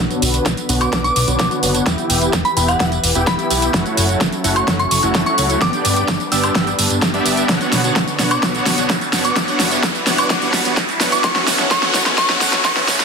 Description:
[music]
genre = EDM, festival progressive house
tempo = 128 BPM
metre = 4/4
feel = straight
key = B minor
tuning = A4 = 440 Hz
[part]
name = lush unison pad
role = sustained chords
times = 0.0-13.0 s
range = D3 to C#5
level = -25 LUFS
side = equal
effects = chorus, sidechain pumping
[part]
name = supersaw chords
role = riff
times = 0.0-13.0 s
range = A3 to G5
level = -20 LUFS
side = equal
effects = analog chorus, sidechain pumping, low-pass filter, ping-pong delay
[part]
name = fat analog bass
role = bass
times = 0.0-13.0 s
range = E1 to C#2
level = -24 LUFS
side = equal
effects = sidechain pumping
[part]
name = pop drum kit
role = drums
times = 0.0-13.0 s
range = hi-hat, snare drum, tambourine, woodblock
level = -18 LUFS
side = right 1 dB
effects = overdrive
[part]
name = riser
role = sound effects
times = 2.6-13.0 s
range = none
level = -26 LUFS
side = equal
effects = none
[part]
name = electronic kick drum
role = drums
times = 0.5-12.7 s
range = none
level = -24 LUFS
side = equal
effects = overdrive, high-pass filter on kick
[part]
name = soft synth bell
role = melody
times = 0.8-12.8 s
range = F#5 to E6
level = -21 LUFS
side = equal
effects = chorus, ping-pong delay
[sound]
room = moderate digital room reverb, RT60 1.0 s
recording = dense, heavily limited modern master, high-pass filter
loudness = -14 LUFS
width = side -5 dB against mid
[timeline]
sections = 0.0-13.0 A section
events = build-up 0.0-13.0; drum fill 0.0-13.0; filter sweep on supersaw synth 0.0-13.0; filter sweep 0.0-13.0; riser 2.6-13.0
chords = 0.0 Bmadd9; 1.9 Em; 3.7 F#m7; 5.6 G; 7.5 Bmadd9; 9.4 Em; 11.2 F#m7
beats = 0.46 0.93 1.40 | 1.86 2.33 2.80 3.27 | 3.74 4.21 4.68 5.15 | 5.62 6.08 6.55 7.02 | 7.49 7.96 8.43 8.90 | 9.37 9.83 10.30 10.77 | 11.24 11.71 12.18 12.65

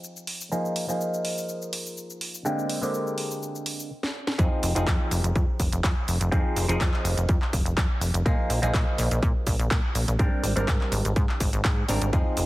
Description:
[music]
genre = filtered disco house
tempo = 124 BPM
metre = 4/4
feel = swing 53% on 16ths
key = F dorian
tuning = A4 = 440 Hz
[part]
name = mellow clav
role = accompaniment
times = 0.0-12.5 s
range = D3 to Bb4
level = -30 LUFS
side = equal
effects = phaser, vintage 12-bit sampler grit, sidechain pumping, low-pass filter
[part]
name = house drum kit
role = drums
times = 0.0-12.5 s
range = cabasa, handclaps, hi-hat, snare drum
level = -31 LUFS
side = equal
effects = overdrive, sidechain pumping on hats, sidechain pumping on perc
[part]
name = plucky analog bass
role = bass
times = 4.4-12.5 s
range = F1 to Bb2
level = -26 LUFS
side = equal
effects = sidechain pumping, low-pass filter
[part]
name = electronic kick drum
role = drums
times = 4.4-12.2 s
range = none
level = -24 LUFS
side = equal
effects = overdrive
[sound]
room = light reverb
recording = heavily compressed radio sound, multiband compression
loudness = -23 LUFS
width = side -18 dB against mid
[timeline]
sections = 0.0-4.4 A section; 4.4-12.5 B section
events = filter sweep on clav 0.0-4.4; drum fill 4.0-4.4; drop 4.4-12.5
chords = 0.0 Fm7; 0.5 Bb7sus4; 2.5 Abmaj9#11; 4.4 Fm7; 8.3 Bb7sus4; 10.2 Abmaj9#11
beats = 0.03 | 0.52 1.00 1.48 1.97 | 2.45 2.94 3.42 3.90 | 4.39 4.87 5.36 5.84 | 6.32 6.81 7.29 7.78 | 8.26 8.74 9.23 9.71 | 10.19 10.68 11.16 11.65 | 12.13

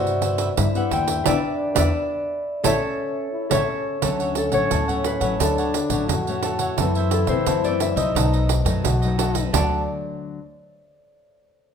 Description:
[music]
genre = samba and choro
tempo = 87 BPM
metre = 4/4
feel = straight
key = D major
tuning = A4 = 440 Hz
[part]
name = Celtic harp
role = melody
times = 0.0-9.9 s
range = A4 to G5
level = -25 LUFS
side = left 2 dB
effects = none
[part]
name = breathy trombone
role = second line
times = 0.0-9.9 s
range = C#4 to F#4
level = -29 LUFS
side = left 3 dB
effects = none
[part]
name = cavaquinho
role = accompaniment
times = 0.0-9.8 s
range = D4 to F#5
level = -30 LUFS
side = right 3 dB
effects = none
[part]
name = nylon-string guitar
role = accompaniment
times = 0.0-10.4 s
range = F#2 to G4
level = -28 LUFS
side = left 6 dB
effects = none
[part]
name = upright bass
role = bass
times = 0.0-9.9 s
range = A1 to C3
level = -25 LUFS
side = equal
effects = none
[part]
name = pandeiro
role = percussion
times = 0.1-9.7 s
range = none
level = -25 LUFS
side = right 7 dB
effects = none
[sound]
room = moderate large studio reverb, RT60 1.2 s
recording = minimal, uncompressed stereo recording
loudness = -19 LUFS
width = side -7 dB against mid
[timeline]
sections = 0.0-4.0 A section; 4.0-9.5 B section; 9.5-11.7 C section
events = band accent 1.3-4.0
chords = 0.0 Cmaj7; 1.3 E5; 2.6 A7; 4.0 Dmaj7; 6.8 F#m7b5; 8.2 B7; 9.5 Dmaj7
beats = 0.57 | 1.26 1.95 2.64 3.33 | 4.02 4.71 5.40 6.09 | 6.78 7.47 8.16 8.85 | 9.54 10.22

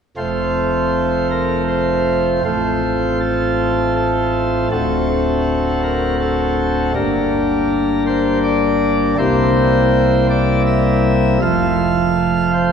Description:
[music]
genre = classical, chorale-style piece for pipe organ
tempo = 80 BPM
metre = 3/4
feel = straight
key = F major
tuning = A4 = 436 Hz
[part]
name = pipe organ, principal chorus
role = solo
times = 0.2-12.7 s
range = D1 to F5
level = -14 LUFS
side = equal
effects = none
[sound]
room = wet church reverb, RT60 2.8 s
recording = heard from further back in the room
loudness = -14 LUFS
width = side -7 dB against mid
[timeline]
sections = 0.2-12.7 A section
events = none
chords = 0.2 F; 2.4 F/A; 4.7 D7; 7.0 Gm; 9.2 C7; 11.4 F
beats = | 0.17 0.93 1.69 | 2.45 3.20 3.96 | 4.71 5.46 6.21 | 6.95 7.70 8.44 | 9.18 9.93 10.67 | 11.42 12.17

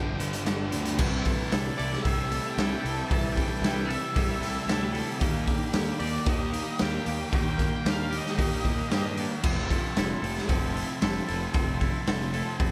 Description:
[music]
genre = rock, shoegaze and dream pop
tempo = 114 BPM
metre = 4/4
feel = straight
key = C major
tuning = A4 = 440 Hz
[part]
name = octave-fuzz lead guitar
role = melody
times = 0.0-9.2 s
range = D5 to A5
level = -39 LUFS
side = equal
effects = distortion, tape echo
[part]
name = picked twelve-string acoustic guitar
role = arpeggios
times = 0.0-12.7 s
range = E3 to G4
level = -40 LUFS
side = equal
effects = lush chorus, tape echo
[part]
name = distorted electric guitar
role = riff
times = 0.0-1.0 s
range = G2 to G3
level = -40 LUFS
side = equal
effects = overdrive
[part]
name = thick fuzz guitar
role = riff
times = 0.0-12.7 s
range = F2 to Eb4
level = -37 LUFS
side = equal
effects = distortion, lush chorus
[part]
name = twangy electric guitar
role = riff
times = 0.0-12.7 s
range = G2 to A4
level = -37 LUFS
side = equal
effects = reverse reverb
[part]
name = fuzz picked electric bass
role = bass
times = 0.0-12.7 s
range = F1 to G2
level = -35 LUFS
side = equal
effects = overdrive
[part]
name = raw garage drum kit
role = drums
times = 0.2-12.7 s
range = crash cymbal, hi-hat, kick drum, snare drum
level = -31 LUFS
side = equal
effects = none
[sound]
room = light reverb, studio reverb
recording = none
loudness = -28 LUFS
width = mono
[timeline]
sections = 1.0-12.7 A section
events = none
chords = 0.0 G7sus4; 1.0 C6; 5.2 Eb; 9.4 Fmaj7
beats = 0.46 | 0.99 1.52 2.04 2.57 | 3.10 3.63 4.16 4.68 | 5.21 5.74 6.27 6.79 | 7.32 7.85 8.38 8.90 | 9.43 9.96 10.48 11.01 | 11.54 12.07 12.59

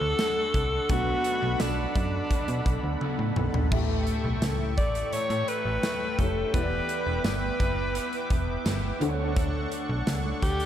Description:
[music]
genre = 1980s-style pop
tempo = 85 BPM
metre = 4/4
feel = straight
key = B minor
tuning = A4 = 440 Hz
[part]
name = bright alto saxophone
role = melody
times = 0.0-10.7 s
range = D4 to D5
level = -29 LUFS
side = equal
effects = analog delay
[part]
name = crunchy overdriven guitar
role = accompaniment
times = 0.0-10.7 s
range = A2 to E4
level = -37 LUFS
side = equal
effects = wide subtle chorus
[part]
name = dark baby grand piano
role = accompaniment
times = 0.0-10.7 s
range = A2 to F#5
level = -35 LUFS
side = left 1 dB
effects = ensemble chorus
[part]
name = brassy analog pad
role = sustained chords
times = 0.0-10.7 s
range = D4 to D6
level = -35 LUFS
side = right 1 dB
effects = chorus
[part]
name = slap-like FM bass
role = bass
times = 0.0-10.7 s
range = E1 to B2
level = -30 LUFS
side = equal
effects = none
[part]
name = modern studio drum kit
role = drums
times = 0.2-10.7 s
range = crash cymbal, hi-hat, kick drum, snare drum, tambourine, toms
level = -29 LUFS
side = equal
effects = none
[sound]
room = moderate lush hall reverb, RT60 2.8 s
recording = dreamy mix soaked in reverb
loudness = -24 LUFS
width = side -10 dB against mid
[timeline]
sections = 0.0-10.7 A section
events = drum fill 3.0-3.7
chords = 0.0 Dmaj7; 0.9 Bm7; 3.7 A7; 6.5 Em7; 9.0 Dmaj7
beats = 0.19 | 0.89 1.60 2.31 3.01 | 3.72 4.42 5.13 5.84 | 6.54 7.25 7.95 8.66 | 9.37 10.07

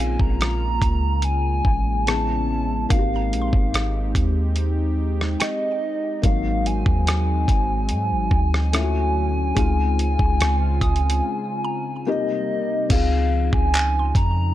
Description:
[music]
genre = contemporary R&B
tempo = 72 BPM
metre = 4/4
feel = straight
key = unclear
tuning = A4 = 440 Hz
[part]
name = hollow clarinet-like synth lead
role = melody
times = 0.0-14.5 s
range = Eb5 to Bb5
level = -26 LUFS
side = equal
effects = chorus, phaser, digital delay
[part]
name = felt-muted upright piano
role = accompaniment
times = 0.0-14.5 s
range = Gb3 to Ab4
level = -28 LUFS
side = left 6 dB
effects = none
[part]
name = warm analog pad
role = sustained chords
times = 0.0-14.5 s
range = C3 to G4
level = -29 LUFS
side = equal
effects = chorus
[part]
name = soft 808-style bass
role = bass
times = 0.0-14.5 s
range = Ab1 to Ab2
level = -22 LUFS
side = equal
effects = none
[part]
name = mallet-like synth pluck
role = texture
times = 0.0-14.5 s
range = F5 to Eb6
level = -37 LUFS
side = right 1 dB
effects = chorus, phaser, digital delay
[part]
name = dusty soul sampler-style drum kit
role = drums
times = 0.2-14.3 s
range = crash cymbal, handclaps, hi-hat, kick drum, rim click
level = -22 LUFS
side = equal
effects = none
[sound]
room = digital ambience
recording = dark, warm production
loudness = -19 LUFS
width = side -13 dB against mid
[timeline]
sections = 0.0-12.9 A section; 12.9-14.5 B section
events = break 11.2-12.9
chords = 0.0 Bbm7; 2.1 Amaj7; 2.9 Abmaj7; 6.2 Ab7; 8.7 Dmaj7; 9.6 Dbmaj7; 12.1 Cm7; 12.9 Dbmaj9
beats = 0.40 1.24 2.07 | 2.90 3.73 4.57 5.40 | 6.24 7.07 7.90 8.73 | 9.57 10.40 11.23 12.07 | 12.90 13.73

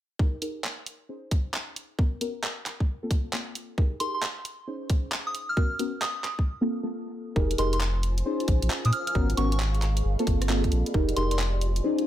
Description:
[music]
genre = UK garage, two-step garage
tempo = 134 BPM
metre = 4/4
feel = swing 65% on 16ths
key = unclear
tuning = A4 = 440 Hz
[part]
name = deep mellow chord stab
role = stabs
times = 0.2-12.1 s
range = Bb3 to C5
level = -30 LUFS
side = equal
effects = chorus, phaser, cassette tape
[part]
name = electronic kick drum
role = drums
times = 0.2-11.1 s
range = none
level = -24 LUFS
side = equal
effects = overdrive, studio reverb
[part]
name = garage drum kit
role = drums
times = 0.4-12.0 s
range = handclaps, hi-hat, rim click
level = -32 LUFS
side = right 1 dB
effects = overdrive, studio reverb
[part]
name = soft synth bell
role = melody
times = 4.0-11.4 s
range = C6 to F6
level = -32 LUFS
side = equal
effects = chorus, dub echo
[part]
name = soft dub sub bass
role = bass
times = 7.4-11.8 s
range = F1 to Bb2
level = -25 LUFS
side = equal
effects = none
[part]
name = granular cloud pad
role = texture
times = 7.9-12.1 s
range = F4 to F5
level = -36 LUFS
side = left 1 dB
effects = built-in reverb, sidechain pumping
[sound]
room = light reverb, digital ambience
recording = none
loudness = -25 LUFS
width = side -12 dB against mid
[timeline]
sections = 0.2-7.4 A section; 7.4-12.1 B section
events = break 6.5-7.4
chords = 0.2 Ebadd11; 1.1 Abadd11/Db; 2.0 Bsus2; 2.9 Fadd11/Bb; 3.8 Ebadd11; 4.7 Dbmaj7sus2; 5.6 Bmaj9; 6.5 Fadd11/Bb; 7.4 Fm11; 8.3 Bbm11; 9.2 Abm11; 10.0 Gm11; 10.9 Fm11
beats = | 0.20 0.64 1.09 1.54 | 1.99 2.44 2.88 3.33 | 3.78 4.23 4.67 5.12 | 5.57 6.02 6.46 6.91 | 7.36 7.81 8.26 8.70 | 9.15 9.60 10.05 10.49 | 10.94 11.39 11.84

